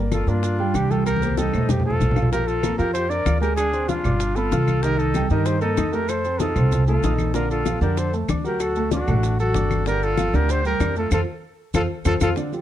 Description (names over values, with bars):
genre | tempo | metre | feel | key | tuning
Afro-Cuban jazz | 191 BPM | 4/4 | straight | Bb major | A4 = 440 Hz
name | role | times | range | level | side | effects
warm concert grand piano | accompaniment | 0.0-12.6 s | D3 to F6 | -26 LUFS | right 2 dB | none
upright bass | bass | 0.0-12.3 s | G1 to G2 | -23 LUFS | equal | none
breathy trumpet | melody | 0.1-12.3 s | F4 to D5 | -25 LUFS | right 1 dB | plate reverb
breathy bright jazz flute | second line | 0.1-12.3 s | D4 to Bb4 | -31 LUFS | left 7 dB | none
bongos | percussion | 0.1-12.5 s | none | -30 LUFS | left 8 dB | none
claves | percussion | 0.1-12.3 s | none | -38 LUFS | left 3 dB | none
congas | percussion | 0.1-12.6 s | none | -27 LUFS | left 2 dB | none
maracas | percussion | 0.1-12.6 s | none | -40 LUFS | right 10 dB | none
room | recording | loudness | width
light reverb | dark, warm production | -19 LUFS | side -12 dB against mid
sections
0.0-2.3 A section; 2.3-12.4 B section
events
drum fill 1.1-2.3; band accent 11.1-12.4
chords
0.0 Gm7; 1.1 Cm7; 1.7 F; 2.3 Bb; 3.6 Dm7b5; 4.2 G7; 4.8 Cm7; 6.1 F7; 7.3 Bbmaj7; 8.6 D; 9.9 Gm7; 11.1 F